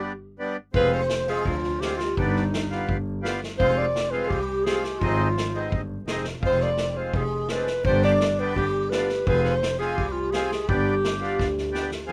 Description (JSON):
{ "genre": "klezmer", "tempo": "84 BPM", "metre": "2/4", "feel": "straight", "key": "G phrygian dominant", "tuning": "A4 = 440 Hz", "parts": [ { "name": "breathy clarinet", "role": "melody", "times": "0.0-11.7 s", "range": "Eb4 to D5", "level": "-28 LUFS", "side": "equal", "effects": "none" }, { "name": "accordion", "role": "accompaniment", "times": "0.0-12.1 s", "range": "G3 to Ab4", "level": "-31 LUFS", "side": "equal", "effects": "none" }, { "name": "rich double bass", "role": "bass", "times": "0.7-12.1 s", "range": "F1 to F2", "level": "-31 LUFS", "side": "equal", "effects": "none" }, { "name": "street-band drum kit", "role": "drums", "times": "0.7-12.1 s", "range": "kick drum, snare drum", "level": "-32 LUFS", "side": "equal", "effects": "none" }, { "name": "sitar", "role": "second line", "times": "0.8-12.1 s", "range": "Eb3 to D4", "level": "-34 LUFS", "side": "equal", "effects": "none" } ], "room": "little or no reverb", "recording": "none", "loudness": "-25 LUFS", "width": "mono", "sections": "0.7-12.1 A section", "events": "break 0.0-0.7; drum fill 11.4-12.1", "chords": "0.0 G; 0.7 Fm; 2.2 G; 3.6 Fm; 5.0 Ab; 6.4 Fm; 7.9 G; 9.3 Fm; 10.7 G" }